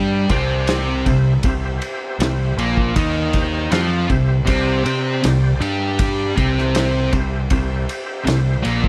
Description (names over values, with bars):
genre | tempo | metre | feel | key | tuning
blues rock power trio and southern rock | 79 BPM | 4/4 | straight | C mixolydian | A4 = 440 Hz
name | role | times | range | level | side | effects
overdriven electric guitar | riff | 0.0-8.9 s | Bb2 to C5 | -22 LUFS | equal | none
growling picked electric bass | bass | 0.0-8.9 s | Bb1 to C3 | -24 LUFS | equal | overdrive
overdriven tonewheel organ | sustained chords | 0.3-8.6 s | G4 to G5 | -30 LUFS | equal | slow rotary speaker, chorus vibrato
vintage drum kit | drums | 0.3-8.9 s | kick drum, ride cymbal, snare drum | -25 LUFS | equal | none
room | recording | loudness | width
little or no reverb | none | -19 LUFS | mono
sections
0.0-8.9 A section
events
none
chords
0.0 C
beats
0.68 | 1.44 2.19 2.96 3.71 | 4.47 5.23 5.99 6.75 | 7.51 8.27